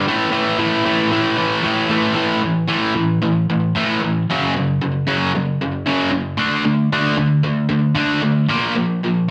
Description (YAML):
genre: rock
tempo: 114 BPM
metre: 4/4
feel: straight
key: unclear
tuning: A4 = 440 Hz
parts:
  - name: distorted electric guitar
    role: solo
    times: 0.0-9.3 s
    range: F#2 to D4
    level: -18 LUFS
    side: equal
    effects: distortion, slapback echo
room: light reverb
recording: heavily compressed radio sound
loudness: -18 LUFS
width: mono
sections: 0.0-2.2 A section; 2.2-9.3 B section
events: none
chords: 0.1 A5; 4.3 F#5; 6.4 D5; 8.5 Bb5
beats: | 0.06 0.59 1.11 1.63 | 2.16 2.69 3.21 3.74 | 4.27 4.79 5.32 5.85 | 6.38 6.91 7.44 7.97 | 8.50 9.03